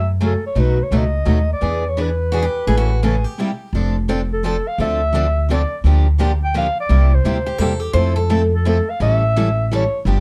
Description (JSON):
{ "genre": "acoustic string swing (jazz manouche)", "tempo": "171 BPM", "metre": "3/4", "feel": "swing 62% on 8ths", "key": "A major, F major from 3.7 s", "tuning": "A4 = 440 Hz", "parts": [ { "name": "breathy clarinet", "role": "melody", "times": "0.0-10.0 s", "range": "A4 to G5", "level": "-24 LUFS", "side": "equal", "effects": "none" }, { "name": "upright bass", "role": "bass", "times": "0.0-10.2 s", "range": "F1 to F#2", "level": "-20 LUFS", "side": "equal", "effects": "none" }, { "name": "picked steel-string acoustic guitar", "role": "accompaniment", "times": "0.2-10.2 s", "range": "B2 to A4", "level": "-28 LUFS", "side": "equal", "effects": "none" }, { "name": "picked steel-string acoustic guitar", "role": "accompaniment", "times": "0.2-10.2 s", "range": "B2 to B4", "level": "-26 LUFS", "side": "equal", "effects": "none" }, { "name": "picked steel-string acoustic guitar", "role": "second line", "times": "2.3-3.7, 7.5-8.4 s", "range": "F#4 to C5", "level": "-26 LUFS", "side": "equal", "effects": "none" } ], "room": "light reverb", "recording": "dark, warm production", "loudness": "-18 LUFS", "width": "mono", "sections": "0.0-3.7 A section; 3.7-10.2 B section", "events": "break 3.4-3.7", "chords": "0.0 F#madd9; 0.6 B7; 1.6 E7; 2.7 A; 3.4 C7; 3.7 F6; 4.8 Dm7; 5.8 Gm7/D; 6.9 C7; 8.0 Fmaj7; 9.0 A7", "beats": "0.21 | 0.56 0.91 1.27 | 1.62 1.97 2.32 | 2.68 3.03 3.38 | 3.73 4.09 4.44 | 4.79 5.14 5.49 | 5.84 6.20 6.55 | 6.90 7.25 7.60 | 7.95 8.30 8.66 | 9.01 9.36 9.71 | 10.06" }